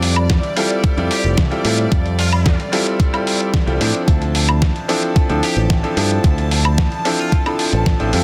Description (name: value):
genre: nu-disco, nu disco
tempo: 111 BPM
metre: 4/4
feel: straight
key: D minor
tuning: A4 = 440 Hz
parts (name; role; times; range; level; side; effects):
- bright concert grand piano; accompaniment; 0.0-8.2 s; F3 to E5; -23 LUFS; equal; slapback echo
- dark studio string section; sustained chords; 0.0-8.2 s; D5 to A5; -30 LUFS; equal; sidechain pumping
- picked electric bass with an envelope filter; bass; 0.0-8.2 s; F1 to A2; -20 LUFS; equal; none
- dusty soul sampler-style drum kit; drums; 0.0-8.2 s; hi-hat, snare drum, woodblock; -24 LUFS; equal; none
- electronic kick drum; drums; 0.3-8.0 s; none; -19 LUFS; equal; overdrive
- muted trumpet section; melody; 1.1-7.4 s; F4 to G4; -32 LUFS; equal; analog delay
room: light reverb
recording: dense, heavily limited modern master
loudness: -17 LUFS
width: mono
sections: 0.0-8.2 A section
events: none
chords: 0.0 Fmaj9; 4.1 Dm9